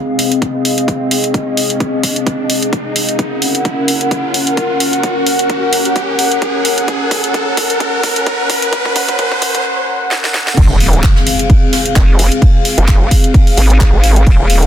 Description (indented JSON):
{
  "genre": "bass house",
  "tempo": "130 BPM",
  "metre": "4/4",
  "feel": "swing 55% on 16ths",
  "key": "F phrygian",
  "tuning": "A4 = 439 Hz",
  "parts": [
    { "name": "dark analog pad", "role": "sustained chords", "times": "0.0-14.7 s", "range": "C4 to Gb5", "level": "-18 LUFS", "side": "left 1 dB", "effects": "chorus, sidechain pumping" },
    { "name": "riser and impact", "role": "sound effects", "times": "0.1-12.4 s", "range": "none", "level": "-19 LUFS", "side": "right 1 dB", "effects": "none" },
    { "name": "warbly tape-like pad", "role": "texture", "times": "0.0-9.7 s", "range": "C4 to Ab5", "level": "-20 LUFS", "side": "left 2 dB", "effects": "chorus, built-in reverb, phaser, sidechain pumping" },
    { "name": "house drum kit", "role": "drums", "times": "0.2-14.7 s", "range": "crash cymbal, handclaps, hi-hat, snare drum", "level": "-17 LUFS", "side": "right 1 dB", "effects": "none" },
    { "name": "electronic kick drum", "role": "drums", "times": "0.4-14.4 s", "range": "none", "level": "-12 LUFS", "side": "equal", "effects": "high-pass filter on kick, high-pass filter on room" },
    { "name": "vowel-sweep wobble bass", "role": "bass", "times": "10.6-14.7 s", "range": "Eb1 to Ab1", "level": "-11 LUFS", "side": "equal", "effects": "chorus, sidechain pumping" },
    { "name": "soft brush drum kit", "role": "drums", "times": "10.6-14.6 s", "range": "ride cymbal, snare drum", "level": "-25 LUFS", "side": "left 3 dB", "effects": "sidechain pumping on cymbals, high-pass filter on cymbals, soft clipping on snare, high-pass filter on snare, high-pass filter on room" }
  ],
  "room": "little or no reverb",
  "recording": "dense, heavily limited modern master, high-pass filter",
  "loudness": "-11 LUFS",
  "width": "side -10 dB against mid",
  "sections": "0.0-10.6 A section; 10.6-14.7 B section",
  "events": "build-up 0.0-10.6; riser 0.1-9.7; drum fill 3.2-9.7, 10.1-10.6; drop 10.6-14.7; impact 10.6-12.4",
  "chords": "0.0 Fm; 3.2 Gb; 10.6 Fm"
}